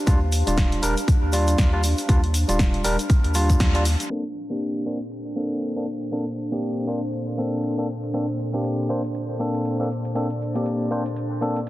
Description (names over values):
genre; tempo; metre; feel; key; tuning
deep house; 119 BPM; 4/4; swing 58% on 16ths; Bb major; A4 = 442 Hz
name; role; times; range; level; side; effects
warbly tape-like pad; texture; 0.0-11.7 s; Bb2 to F5; -30 LUFS; equal; chorus, built-in reverb, sidechain pumping
overdriven tine electric piano; stabs; 0.1-11.6 s; G3 to C5; -26 LUFS; equal; sidechain pumping, low-pass filter, dub echo
round analog bass; bass; 0.1-4.0 s; Eb1 to Eb2; -22 LUFS; equal; sidechain pumping
electronic kick drum; drums; 0.1-3.7 s; none; -19 LUFS; equal; studio ambience
punchy analog drum machine; drums; 0.1-11.7 s; hi-hat, snare drum; -29 LUFS; equal; overdrive, low-pass filter on hats, studio ambience, low-pass filter on snare
egg shaker; percussion; 0.1-11.7 s; none; -35 LUFS; left 3 dB; none
dark analog pad; sustained chords; 5.1-11.7 s; Bb3 to C5; -32 LUFS; equal; none
room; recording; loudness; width
light reverb; dense, heavily limited modern master, vinyl crackle, low-pass filter; -21 LUFS; side -16 dB against mid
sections
0.0-4.1 A section; 4.1-11.7 B section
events
band accent 3.6; filter sweep 4.1-11.7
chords
0.0 Ebmaj9; 4.1 Bbmaj9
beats
| 0.07 0.58 1.08 1.58 | 2.09 2.59 3.10 3.60 | 4.11 4.61 5.11 5.62 | 6.12 6.63 7.13 7.63 | 8.14 8.64 9.15 9.65 | 10.16 10.66 11.16 11.67